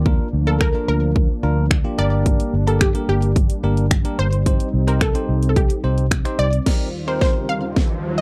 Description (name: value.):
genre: dance-pop.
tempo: 109 BPM.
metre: 4/4.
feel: straight.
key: unclear.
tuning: A4 = 440 Hz.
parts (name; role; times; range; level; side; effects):
unison pluck; melody; 0.0-8.2 s; G4 to F5; -27 LUFS; equal; slapback echo.
warm analog pad; sustained chords; 0.0-8.2 s; Eb2 to C5; -31 LUFS; equal; chorus, sidechain pumping.
vintage muted fingered electric bass; bass; 0.0-6.6 s; G1 to Eb2; -21 LUFS; equal; sidechain pumping.
bell-like tine electric piano; accompaniment; 0.1-7.6 s; Bb3 to C5; -28 LUFS; equal; sidechain pumping.
house drum kit; drums; 0.1-7.9 s; crash cymbal, finger snaps, hi-hat, kick drum, snare drum; -21 LUFS; equal; overdrive.
riser; sound effects; 7.4-8.2 s; none; -34 LUFS; equal; none.
room: little or no reverb.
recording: dry, close 1970s-style studio recording.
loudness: -19 LUFS.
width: mono.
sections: 0.0-6.7 A section; 6.7-8.2 B section.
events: build-up 6.7-8.2; drum fill 6.7-8.2; riser 7.4-8.2.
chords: 0.1 Bb/D; 2.0 Gm; 4.5 Cm; 6.7 Eb6.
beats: | 0.06 0.61 1.16 1.71 | 2.26 2.81 3.36 3.91 | 4.46 5.01 5.56 6.11 | 6.66 7.21 7.76.